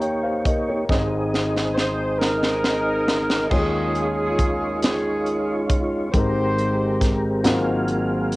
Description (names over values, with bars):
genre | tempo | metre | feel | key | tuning
slow gospel | 46 BPM (dotted quarters) | 6/8 | straight | Ab major | A4 = 440 Hz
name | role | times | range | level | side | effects
warm concert grand piano | accompaniment | 0.0-8.4 s | Ab1 to Bb5 | -25 LUFS | left 1 dB | none
percussive tonewheel organ | sustained chords | 0.0-8.4 s | Gb3 to F5 | -24 LUFS | right 1 dB | fast rotary speaker, chorus vibrato
tight funk drum kit | drums | 0.0-8.4 s | crash cymbal, hi-hat, kick drum, snare drum | -22 LUFS | equal | cassette tape
warm horn section | melody | 1.7-7.4 s | Db4 to C5 | -24 LUFS | equal | cassette tape
room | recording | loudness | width
moderate studio reverb, RT60 0.6 s | home recording on cassette | -19 LUFS | side -20 dB against mid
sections
0.0-3.5 A section; 3.5-8.4 B section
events
drum fill 0.9-3.5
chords
0.0 Eb7; 0.9 Ab; 3.5 Eb9sus4; 6.1 Abmaj9; 7.4 Ab13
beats
| 0.89 2.20 | 3.52 4.83 | 6.14 7.45